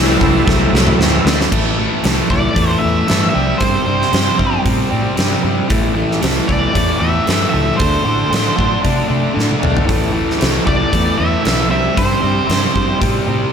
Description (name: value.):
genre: blues rock power trio and southern rock.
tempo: 115 BPM.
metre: 4/4.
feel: straight.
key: A minor.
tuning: A4 = 440 Hz.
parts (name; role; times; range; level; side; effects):
overdriven tonewheel organ; sustained chords; 0.0-1.5 s; E4 to E5; -23 LUFS; right 2 dB; slow rotary speaker, chorus vibrato.
fuzz guitar; riff; 0.0-13.5 s; A2 to D4; -17 LUFS; equal; distortion.
vintage muted fingered electric bass; bass; 0.0-13.4 s; A1 to C3; -20 LUFS; equal; none.
huge arena drum kit; drums; 0.2-13.1 s; crash cymbal, hi-hat, kick drum, snare drum, toms; -18 LUFS; equal; none.
octave-fuzz lead guitar; melody; 2.3-13.0 s; C5 to E5; -20 LUFS; right 2 dB; distortion, slapback echo, digital delay.
room: moderate lush hall reverb, RT60 2.4 s.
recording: big arena sound.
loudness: -13 LUFS.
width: side -7 dB against mid.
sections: 0.0-1.5 A section; 1.5-13.5 B section.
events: drum fill 0.5-1.5, 9.4-9.9.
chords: 0.0 Am; 3.3 C5; 5.7 Am; 7.8 D5; 9.9 Am; 11.7 C5.